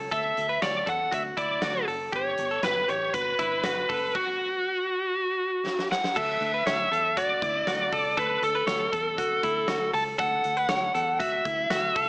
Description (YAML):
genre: jangly indie pop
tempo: 119 BPM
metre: 4/4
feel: straight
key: D major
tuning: A4 = 439 Hz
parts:
  - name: direct-recorded clean electric guitar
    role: arpeggios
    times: 0.0-12.1 s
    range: E4 to C#5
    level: -32 LUFS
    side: equal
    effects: none
  - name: fingered electric bass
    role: bass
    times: 0.0-12.1 s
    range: F#1 to E2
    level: -43 LUFS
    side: equal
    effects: none
  - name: biting lead guitar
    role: melody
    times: 0.1-12.1 s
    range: F#4 to A5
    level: -28 LUFS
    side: equal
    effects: overdrive
  - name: big rock drum kit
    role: drums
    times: 0.1-12.1 s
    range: crash cymbal, hi-hat, kick drum, snare drum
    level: -38 LUFS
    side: equal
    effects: gated reverb
room: moderate studio reverb, RT60 0.6 s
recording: small speaker sound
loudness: -27 LUFS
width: mono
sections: 0.0-6.2 A section; 6.2-12.1 B section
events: drum fill 5.7-6.2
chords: 0.0 D; 2.1 Gmaj7; 6.2 Dadd9